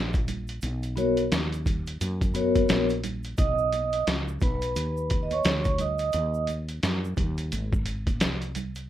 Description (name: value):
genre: hip hop, jazz-hop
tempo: 87 BPM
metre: 4/4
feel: swing 60% on 16ths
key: B major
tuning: A4 = 440 Hz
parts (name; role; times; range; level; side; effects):
- woody fretless electric bass; bass; 0.0-8.9 s; G#1 to F#2; -30 LUFS; equal; none
- trip hop sampler-style drum kit; drums; 0.1-8.9 s; hi-hat, kick drum, snare drum; -27 LUFS; equal; none
- egg shaker and congas; percussion; 0.1-8.9 s; none; -40 LUFS; right 7 dB; none
- vibraphone with soft mallets; accompaniment; 1.0-6.5 s; B3 to D#6; -26 LUFS; equal; none
room: little or no reverb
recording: rough home demo mix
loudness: -24 LUFS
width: side -12 dB against mid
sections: 0.0-3.4 A section; 3.4-8.9 A section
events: vibraphone solo 3.4-8.9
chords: 0.0 Bmaj7; 3.4 B; 6.1 D#m; 7.5 G#